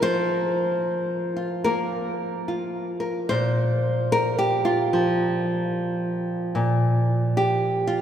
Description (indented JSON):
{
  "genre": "folk, solo fingerstyle acoustic guitar",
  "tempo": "74 BPM",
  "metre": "4/4",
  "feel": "swing 63% on 8ths",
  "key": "unclear",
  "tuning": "A4 = 440 Hz",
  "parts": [
    { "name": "nylon-string guitar", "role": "solo", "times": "0.0-8.0 s", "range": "Bb2 to C5", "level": "-21 LUFS", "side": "equal", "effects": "none" }
  ],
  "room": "wet cathedral reverb, RT60 5.2 s",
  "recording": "recorded in a church or concert hall",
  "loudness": "-21 LUFS",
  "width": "side -9 dB against mid",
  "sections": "0.0-3.3 A section; 3.3-8.0 B section",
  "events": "none",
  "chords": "0.0 Fsus4; 3.3 Bbsus2",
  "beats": "| 0.03 0.84 1.66 2.48 | 3.29 4.11 4.92 5.74 | 6.55 7.37"
}